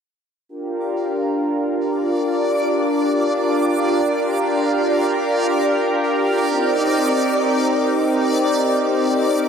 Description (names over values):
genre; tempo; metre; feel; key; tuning
drum and bass; free time; none; none; G minor; A4 = 438 Hz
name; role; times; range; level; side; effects
lush unison pad; sustained chords; 0.5-9.5 s; C4 to Bb4; -18 LUFS; equal; chorus
backwards swelling texture; texture; 2.1-9.5 s; D5 to D6; -23 LUFS; right 1 dB; built-in reverb
room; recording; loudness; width
moderate plate reverb, RT60 2.6 s; none; -17 LUFS; side -7 dB against mid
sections
0.5-9.5 A section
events
none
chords
0.5 Gm7; 6.5 Cm7